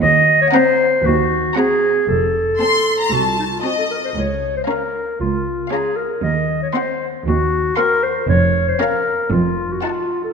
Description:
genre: cinematic, playful, whimsical film cue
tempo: 116 BPM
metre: 4/4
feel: straight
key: Bb minor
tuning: A4 = 439 Hz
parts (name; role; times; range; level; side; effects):
- dark clarinet; second line; 0.0-10.3 s; Eb4 to Eb5; -17 LUFS; left 1 dB; none
- warm studio cello section; bass; 0.0-9.7 s; C2 to F2; -23 LUFS; right 4 dB; none
- warm studio double bass section; bass; 0.0-9.7 s; F1 to Eb2; -24 LUFS; right 3 dB; none
- rich studio violin section; melody; 0.5-10.2 s; A5 to C6; -29 LUFS; left 4 dB; none
- rich studio violin section; second line; 0.5-10.2 s; Eb5 to C6; -22 LUFS; left 3 dB; none
- warm studio viola section; accompaniment; 0.5-10.2 s; C4 to Eb4; -25 LUFS; right 2 dB; none
room: wet concert hall reverb, RT60 2.0 s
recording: none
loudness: -15 LUFS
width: side -5 dB against mid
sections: 0.0-10.3 A section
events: none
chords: 0.0 Cm7b5/Eb; 2.1 F; 4.2 Bbm/Db; 6.2 Cdim/Eb; 8.3 Bbm/F; 9.3 F7b9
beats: | 0.02 0.53 1.05 1.56 | 2.08 2.60 3.12 3.64 | 4.16 4.68 5.20 5.71 | 6.23 6.74 7.26 7.77 | 8.29 8.80 9.31 9.83

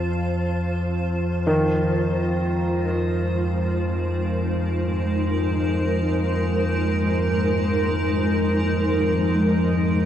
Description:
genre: dark ambient drone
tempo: free time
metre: none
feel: none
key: unclear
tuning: A4 = 439 Hz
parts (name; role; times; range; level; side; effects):
- granular cloud pad; sustained chords; 0.0-10.1 s; Ab3 to A5; -23 LUFS; equal; built-in reverb, shimmer reverb
- deep rumbling drone; drone; 0.0-10.1 s; F2 to F3; -23 LUFS; equal; built-in reverb
- clear concert grand piano; arpeggios; 1.5-10.1 s; Eb3; -27 LUFS; equal; tape echo, shimmer reverb
room: wet cathedral reverb, RT60 7.0 s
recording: in a vast, echoing space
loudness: -20 LUFS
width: side -10 dB against mid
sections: 0.0-10.1 A section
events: fade-in on synth drone 0.0-10.1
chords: 0.0 F; 1.5 Ab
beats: free time

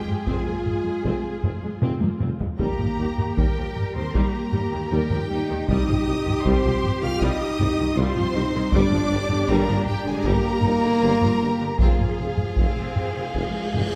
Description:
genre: cinematic, epic orchestral film score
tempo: 78 BPM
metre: 4/4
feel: straight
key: unclear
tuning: A4 = 440 Hz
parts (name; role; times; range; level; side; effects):
- clear symphonic violin section; melody; 0.0-14.0 s; F5 to F6; -36 LUFS; equal; none
- rich chamber violin section; second line; 0.0-14.0 s; F4 to F5; -36 LUFS; equal; none
- warm symphonic viola section; accompaniment; 0.0-13.9 s; D3 to Ab4; -32 LUFS; equal; none
- mellow French horn section; sustained chords; 0.0-14.0 s; F3 to F4; -30 LUFS; equal; none
- warm symphonic cello section; bass; 0.0-14.0 s; D4 to Bb4; -33 LUFS; equal; none
- warm symphonic double bass section; bass; 0.1-13.8 s; F1 to F2; -32 LUFS; equal; none
- taiko ensemble; drums; 0.1-14.0 s; none; -28 LUFS; equal; none
- warm tuba; bass; 0.3-13.8 s; F1 to Eb2; -32 LUFS; equal; none
- cymbal swell; sound effects; 12.9-14.0 s; none; -40 LUFS; equal; none
room: wet scoring stage reverb, RT60 1.7 s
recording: none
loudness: -23 LUFS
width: mono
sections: 0.0-14.0 A section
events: drum fill 1.8-2.6; cymbal swell 12.9-14.0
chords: 0.0 Fm; 2.6 Eb; 5.7 Cm; 8.7 Gm; 11.8 Fm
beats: 0.27 1.05 1.82 | 2.60 3.38 4.15 4.91 | 5.69 6.46 7.22 7.98 | 8.74 9.50 10.26 11.03 | 11.80 12.58 13.36

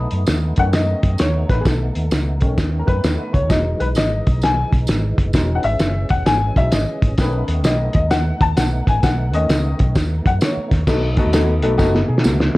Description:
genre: uptempo 1960s-style soul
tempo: 130 BPM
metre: 4/4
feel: swing 66% on 8ths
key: unclear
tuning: A4 = 442 Hz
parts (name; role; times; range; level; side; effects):
- percussive tonewheel organ; sustained chords; 0.0-12.6 s; E3 to D#4; -29 LUFS; right 1 dB; overdrive, chorus vibrato, slow rotary speaker
- fingered electric bass; bass; 0.0-12.6 s; E1 to B2; -20 LUFS; equal; none
- cloth-damped thuddy drum kit; drums; 0.1-12.6 s; crash cymbal, hi-hat, kick drum, snare drum; -18 LUFS; equal; vintage 12-bit sampler grit
- tambourine; percussion; 0.3-12.4 s; none; -35 LUFS; right 4 dB; none
- warm upright piano; accompaniment; 0.6-12.6 s; D#3 to A5; -22 LUFS; left 2 dB; none
room: light reverb, studio ambience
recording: cassette tape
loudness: -15 LUFS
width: side -19 dB against mid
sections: 0.0-10.9 A section; 10.9-12.6 B section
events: upright piano solo 0.0-10.9; drum fill 11.8-12.6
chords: 0.0 B7; 3.5 Emaj7; 7.2 B7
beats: 0.27 0.73 1.19 | 1.66 2.12 2.58 3.04 | 3.50 3.96 4.42 4.88 | 5.34 5.80 6.26 6.72 | 7.18 7.65 8.11 8.57 | 9.03 9.49 9.95 10.41 | 10.87 11.33 11.79 12.24

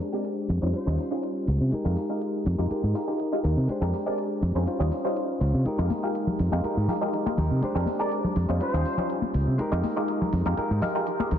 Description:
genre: filtered disco house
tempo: 122 BPM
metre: 4/4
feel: straight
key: F minor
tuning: A4 = 440 Hz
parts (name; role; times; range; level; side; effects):
- muted clav; accompaniment; 0.0-11.4 s; G3 to Eb5; -30 LUFS; equal; overdrive, phaser, low-pass filter
- direct-recorded clean electric guitar; riff; 0.0-11.4 s; G3 to C5; -30 LUFS; left 1 dB; low-pass filter
- electronic hi-hat; drums; 0.0-11.4 s; none; -55 LUFS; right 4 dB; low-pass filter on hats, low-pass filter on perc, low-pass filter on snare, low-pass filter on room
- mellow trumpet section; melody; 0.1-4.2, 8.0-9.1 s; C5 to D5; -37 LUFS; right 1 dB; vintage 12-bit sampler grit, low-pass filter
- fingered electric bass; bass; 0.5-11.4 s; Db2 to C3; -24 LUFS; equal; tube saturation, low-pass filter
- egg shaker and congas; percussion; 5.7-11.4 s; none; -32 LUFS; left 3 dB; low-pass filter on perc
room: moderate echo chamber reverb, RT60 2.4 s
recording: dense, heavily limited modern master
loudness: -24 LUFS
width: side -9 dB against mid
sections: 0.0-11.4 A section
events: filter sweep 0.0-11.4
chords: 0.0 Bb13; 0.7 Eb13; 1.7 Fm11; 3.7 Bb13/F; 4.7 Eb13; 5.7 Fm11; 7.6 Bb13/F; 8.6 Eb13; 9.6 Fm11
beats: 0.25 0.74 1.23 | 1.72 2.21 2.71 3.20 | 3.69 4.18 4.67 5.17 | 5.66 6.15 6.64 7.13 | 7.62 8.12 8.61 9.10 | 9.59 10.08 10.58 11.07

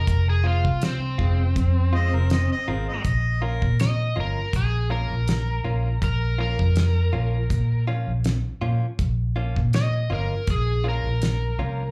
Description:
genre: straight-eighth soul blues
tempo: 81 BPM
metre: 4/4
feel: swing 54% on 16ths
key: unclear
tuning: A4 = 440 Hz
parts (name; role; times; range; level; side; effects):
- overdriven slide guitar; melody; 0.0-11.9 s; C4 to Eb5; -32 LUFS; equal; slapback echo
- vintage muted fingered electric bass; bass; 0.0-11.9 s; F1 to Bb2; -24 LUFS; equal; none
- damped 70s drum kit; drums; 0.1-11.4 s; hi-hat, kick drum, snare drum; -28 LUFS; equal; none
- direct-recorded clean electric guitar; stabs; 0.4-11.8 s; F3 to F4; -36 LUFS; equal; slapback echo
- warm harmonica; second line; 1.9-3.8 s; Bb4 to Eb5; -32 LUFS; equal; overdrive, slapback echo
room: little or no reverb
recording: live gig heard through the venue's PA, club reverb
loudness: -23 LUFS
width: mono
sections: 0.0-11.9 A section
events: none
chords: 0.0 Fm; 3.0 Bbm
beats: | 0.08 0.82 1.56 2.31 | 3.05 3.79 4.53 5.28 | 6.02 6.76 7.50 8.25 | 8.99 9.73 10.47 11.22

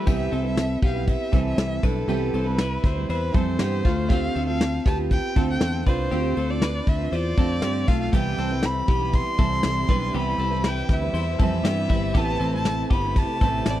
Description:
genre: jangly indie pop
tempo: 119 BPM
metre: 4/4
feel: straight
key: C major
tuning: A4 = 438 Hz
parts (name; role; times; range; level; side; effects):
- rich violin; melody; 0.0-13.8 s; A4 to C6; -29 LUFS; equal; tape echo
- picked steel-string acoustic guitar; accompaniment; 0.0-13.8 s; A2 to C5; -30 LUFS; right 7 dB; none
- rich studio string section; sustained chords; 0.0, 8.1-13.8 s; C3 to B4; -35 LUFS; left 2 dB; none
- twelve-string electric guitar; arpeggios; 0.0-13.8 s; G3 to C5; -28 LUFS; left 2 dB; none
- fingered electric bass; bass; 0.1-13.8 s; G1 to G2; -27 LUFS; equal; none
- soft brush drum kit; drums; 0.1-13.8 s; crash cymbal, hi-hat, kick drum, ride cymbal, snare drum; -22 LUFS; equal; none
room: small room ambience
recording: dry, close 1970s-style studio recording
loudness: -20 LUFS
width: side -13 dB against mid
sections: 0.1-13.8 A section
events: none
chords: 0.1 Cmaj7; 12.2 Amadd9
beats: | 0.07 0.58 1.08 1.58 | 2.09 2.59 3.09 3.60 | 4.10 4.60 5.11 5.61 | 6.11 6.62 7.12 7.62 | 8.13 8.63 9.13 9.64 | 10.14 10.64 11.15 11.65 | 12.15 12.66 13.16 13.67

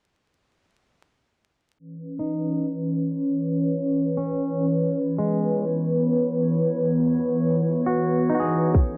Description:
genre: future garage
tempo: 138 BPM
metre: 4/4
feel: swing 61% on 16ths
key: C# minor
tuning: A4 = 438 Hz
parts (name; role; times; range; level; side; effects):
- airy breathy pad; sustained chords; 1.8-9.0 s; E3 to B4; -25 LUFS; equal; chorus, vintage 12-bit sampler grit, sidechain pumping, cassette tape
- drifting glass-harmonics texture; texture; 3.2-9.0 s; C#5; -38 LUFS; equal; chorus, built-in reverb, cassette tape
- semi-hollow electric guitar; accompaniment; 2.2-8.8 s; G#3 to G#4; -29 LUFS; equal; sidechain pumping, low-pass filter, cassette tape, analog delay
- electronic hi-hat; drums; 8.7-8.9 s; none; -66 LUFS; equal; none
- electronic kick drum; drums; 8.7-8.9 s; none; -21 LUFS; equal; cassette tape
room: moderate booth ambience, RT60 0.2 s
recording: home recording on cassette, vinyl crackle, low-pass filter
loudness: -23 LUFS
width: mono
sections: 1.8-9.0 A section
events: filter sweep on clean electric guitar 1.8-9.0; filter sweep 1.8-9.0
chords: 1.8 C#m7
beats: | 1.79 2.23 2.66 3.10 | 3.53 3.96 4.40 4.83 | 5.27 5.70 6.14 6.57 | 7.01 7.44 7.88 8.31 | 8.75

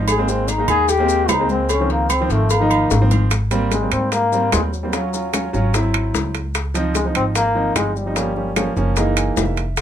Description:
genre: Afro-Cuban jazz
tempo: 149 BPM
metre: 4/4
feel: straight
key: Ab major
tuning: A4 = 440 Hz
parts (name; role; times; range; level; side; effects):
- warm baby grand piano; accompaniment; 0.0-9.7 s; Eb3 to Ab5; -22 LUFS; right 2 dB; none
- upright bass; bass; 0.0-9.8 s; F1 to Ab2; -21 LUFS; equal; none
- clear trombone; melody; 0.1-9.0 s; Gb3 to Ab4; -20 LUFS; left 3 dB; none
- agogo bells and timbales; percussion; 0.1-9.8 s; none; -25 LUFS; right 9 dB; none
- claves; percussion; 0.1-9.8 s; none; -31 LUFS; left 10 dB; none
- congas; percussion; 0.1-9.8 s; none; -31 LUFS; left 2 dB; none
- cowbell and bongos; percussion; 0.1-9.8 s; none; -26 LUFS; left 5 dB; none
- maracas; percussion; 0.1-9.8 s; none; -30 LUFS; left 7 dB; none
room: moderate club reverb, RT60 0.5 s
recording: minimal, uncompressed stereo recording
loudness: -16 LUFS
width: side -10 dB against mid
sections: 0.0-3.3 A section; 3.3-9.8 B section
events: trombone solo 0.0-3.3; drum fill 2.9-3.3; grand piano fill 9.0-9.8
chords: 0.1 Abadd9; 1.7 Dbmaj7; 3.3 Abmaj9; 4.9 Ebm7; 5.7 Abaug7; 6.5 Dbmaj7; 8.2 Gm7b5; 9.0 Gb13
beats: | 0.08 0.49 0.89 1.29 | 1.70 2.10 2.50 2.91 | 3.31 3.72 4.12 4.53 | 4.93 5.33 5.74 6.14 | 6.55 6.95 7.36 7.76 | 8.16 8.57 8.97 9.37 | 9.78

